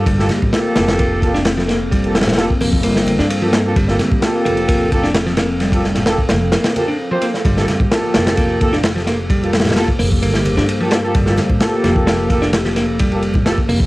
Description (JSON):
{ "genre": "breakbeat, breaks", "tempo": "130 BPM", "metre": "4/4", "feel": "straight", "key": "G minor", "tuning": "A4 = 442 Hz", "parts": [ { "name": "warbly tape-like pad", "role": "sustained chords", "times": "0.0-13.9 s", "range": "F3 to A4", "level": "-23 LUFS", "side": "left 1 dB", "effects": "chorus, built-in reverb, phaser, sidechain pumping, cassette tape" }, { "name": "mellow brass ensemble", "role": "stabs", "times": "0.0-13.6 s", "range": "Bb3 to C5", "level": "-21 LUFS", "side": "equal", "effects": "vintage 12-bit sampler grit, cassette tape, tape echo" }, { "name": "upright bass", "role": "bass", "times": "0.0-13.9 s", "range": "F1 to G2", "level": "-21 LUFS", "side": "equal", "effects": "none" }, { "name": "modern bright picked electric bass", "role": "riff", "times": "0.1-13.8 s", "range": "F3 to D4", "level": "-21 LUFS", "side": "equal", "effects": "overdrive, cassette tape, tape echo" }, { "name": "crunchy breakbeat drum kit", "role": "drums", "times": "0.1-13.9 s", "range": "hi-hat, kick drum, ride cymbal, snare drum", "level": "-17 LUFS", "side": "equal", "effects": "cassette tape" }, { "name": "congas", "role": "percussion", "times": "0.3-13.8 s", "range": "none", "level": "-26 LUFS", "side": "right 1 dB", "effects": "none" } ], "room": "light reverb", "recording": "home recording on cassette", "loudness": "-13 LUFS", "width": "side -19 dB against mid", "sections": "0.0-13.9 A section", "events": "none", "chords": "0.0 Gm9" }